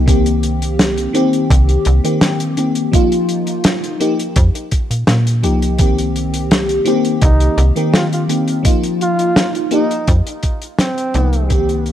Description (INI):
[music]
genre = vaporwave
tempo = 84 BPM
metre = 4/4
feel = straight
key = unclear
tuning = A4 = 441 Hz
[part]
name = FM electric piano with soft pad layer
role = accompaniment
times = 0.0-11.9 s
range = Eb3 to G4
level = -16 LUFS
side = left 1 dB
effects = phaser, analog chorus, tape echo
[part]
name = slap-like FM bass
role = bass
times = 0.0-11.9 s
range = C2 to Bb2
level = -15 LUFS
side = equal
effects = none
[part]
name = electronic kick drum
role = drums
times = 0.1-11.7 s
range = none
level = -14 LUFS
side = equal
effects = none
[part]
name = warm soul drum kit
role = drums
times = 0.1-11.9 s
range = hi-hat, snare drum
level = -18 LUFS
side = equal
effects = none
[part]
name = breathy flugelhorn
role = melody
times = 7.2-11.6 s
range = C4 to F4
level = -21 LUFS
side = right 2 dB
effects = tape echo
[sound]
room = light reverb, small room ambience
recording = dry, gritty hardware recording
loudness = -13 LUFS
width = side -11 dB against mid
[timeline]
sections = 0.0-11.9 A section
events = fade-out 9.6-11.9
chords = 0.1 Cm7; 2.9 F9sus4; 5.8 Cm7; 8.6 F9sus4